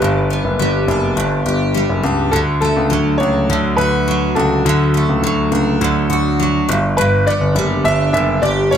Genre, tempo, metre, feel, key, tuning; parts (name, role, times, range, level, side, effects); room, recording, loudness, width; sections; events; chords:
acoustic pop; 103 BPM; 4/4; straight; D major; A4 = 441 Hz
clear upright piano; melody; 0.0-8.8 s; A4 to E5; -19 LUFS; equal
picked steel-string acoustic guitar; accompaniment; 0.0-8.8 s; G2 to G4; -17 LUFS; equal; double-tracked left and right
warm concert grand piano; bass; 0.0-8.8 s; F#1 to D2; -18 LUFS; equal
moderate studio reverb, RT60 0.8 s; -13 LUFS; side -8 dB against mid
0.0-8.8 A section
0.0 G; 2.3 D; 6.7 G